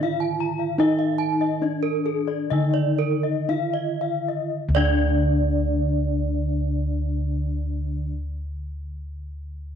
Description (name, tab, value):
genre	Balinese gamelan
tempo	53-81 BPM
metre	4/4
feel	straight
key	D pelog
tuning	A4 = 440 Hz
part	gamelan-type bronze metallophone	melody	0.0-8.1 s	D4 to E4+50c	-28 LUFS	left 2 dB	none
part	gamelan-type bronze metallophone	accompaniment	0.0-8.1 s	D3 to Eb3	-32 LUFS	right 9 dB	none
part	gamelan-type bronze metallophone	arpeggios	0.0-8.1 s	A4-45c to Bb5-40c	-29 LUFS	left 11 dB	none
part	gamelan-type bossed gongs	bass	0.0-8.0 s	D2 to Eb4	-25 LUFS	left 1 dB	none
part	gamelan-type bronze metallophone	arpeggios	0.2-8.1 s	Bb4-40c to A5-45c	-29 LUFS	right 10 dB	none
room	light reverb, small room ambience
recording	1960s-style stereo with parts hard left and right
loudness	-21 LUFS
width	side -8 dB against mid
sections	0.0-4.6 A section; 4.6-9.1 B section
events	slowing down 0.0-4.6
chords	none